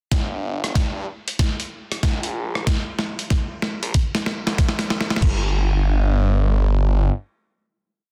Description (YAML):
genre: glitch hop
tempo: 94 BPM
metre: 4/4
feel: swing 64% on 16ths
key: G minor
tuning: A4 = 438 Hz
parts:
  - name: phased detuned saw bass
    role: bass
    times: 0.1-7.1 s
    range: G1 to G2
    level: -23 LUFS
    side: equal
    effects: phaser, overdrive, high-pass filter
  - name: boom bap sampler-style drum kit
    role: drums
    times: 0.1-5.4 s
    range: crash cymbal, hi-hat, rim click, snare drum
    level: -27 LUFS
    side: equal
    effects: none
  - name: electronic kick drum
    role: drums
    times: 0.1-5.4 s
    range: none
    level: -22 LUFS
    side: equal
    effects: none
room: little or no reverb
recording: dense, heavily limited modern master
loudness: -22 LUFS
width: mono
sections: 0.1-5.2 build; 5.2-7.8 final chord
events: build-up 0.1-5.2; drum fill 0.1-5.2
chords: none